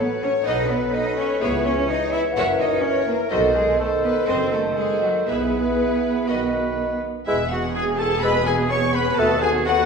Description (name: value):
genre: quick classical-period movement for symphony orchestra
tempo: 125 BPM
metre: 4/4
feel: rubato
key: E major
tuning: A4 = 439 Hz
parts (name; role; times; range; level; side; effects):
- bright clarinet; second line; 0.0-9.3 s; F#4 to B4; -30 LUFS; left 2 dB; none
- clear oboe; second line; 0.0-9.9 s; E4 to C#5; -30 LUFS; right 2 dB; none
- hollow small flute group; second line; 0.0-9.4 s; F#4 to E6; -31 LUFS; left 2 dB; none
- rich studio violin section; second line; 0.0-9.9 s; B3 to F#5; -31 LUFS; left 3 dB; none
- dark bassoon; accompaniment; 0.0-9.4 s; D#3 to A3; -27 LUFS; left 1 dB; none
- mellow French horn section; sustained chords; 0.0-9.9 s; B3 to E5; -26 LUFS; equal; none
- clear chamber cello section; bass; 0.0-9.9 s; D#2 to F#4; -26 LUFS; right 3 dB; none
- rich studio violin section; melody; 0.5-9.9 s; D#5 to C#6; -27 LUFS; left 6 dB; none
- rich chamber viola section; accompaniment; 0.5-9.9 s; F#4 to D#5; -29 LUFS; right 2 dB; none
- clear studio double bass section; bass; 0.5-9.9 s; E1 to D#2; -30 LUFS; right 1 dB; none
- dark trumpet; stabs; 7.3-9.9 s; E4 to C#5; -25 LUFS; equal; none
room: wet recital hall reverb, RT60 1.7 s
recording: heard from further back in the room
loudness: -18 LUFS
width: side -5 dB against mid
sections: 0.0-7.3 A section; 7.3-9.9 B section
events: none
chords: 0.5 B7; 1.4 C#m7; 2.4 F#7; 3.3 B7b9; 5.3 E/B; 6.3 B; 7.3 E; 9.2 B7/D#